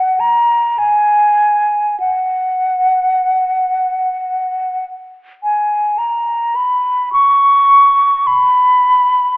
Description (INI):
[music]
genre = classical, free, expressive piece for unaccompanied flute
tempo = 50-55 BPM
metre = 4/4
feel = rubato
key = unclear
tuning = A4 = 442 Hz
[part]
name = mellow concert flute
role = solo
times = 0.0-9.4 s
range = F#5 to C#6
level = -11 LUFS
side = equal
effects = none
[sound]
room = wet recital hall reverb, RT60 1.6 s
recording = telephone sound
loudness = -11 LUFS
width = side -26 dB against mid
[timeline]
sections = 0.0-9.4 A section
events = none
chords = none